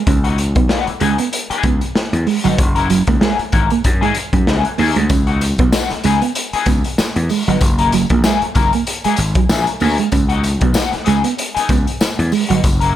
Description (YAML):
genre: funk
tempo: 96 BPM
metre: 4/4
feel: swing 56% on 16ths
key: C# dorian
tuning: A4 = 440 Hz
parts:
  - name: mellow electric guitar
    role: riff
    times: 0.0-12.8 s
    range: F#3 to C#4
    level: -20 LUFS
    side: right 8 dB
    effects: none
  - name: electric guitar at the edge of break-up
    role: accompaniment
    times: 0.1-12.9 s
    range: E3 to A#4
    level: -21 LUFS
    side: left 6 dB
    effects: wah
  - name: gritty slap bass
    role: bass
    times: 0.1-13.0 s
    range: F#1 to G#2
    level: -17 LUFS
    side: equal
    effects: overdrive
  - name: raw garage drum kit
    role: drums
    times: 0.1-12.9 s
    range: hi-hat, kick drum, snare drum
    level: -18 LUFS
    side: left 1 dB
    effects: none
  - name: tambourine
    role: percussion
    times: 5.1-12.8 s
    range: none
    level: -31 LUFS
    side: left 5 dB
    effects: none
room: studio reverb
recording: none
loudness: -13 LUFS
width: side -12 dB against mid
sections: 0.0-13.0 A section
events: none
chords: 0.1 C#m11; 2.6 F#9; 5.1 C#m11; 7.6 F#9; 10.1 C#m11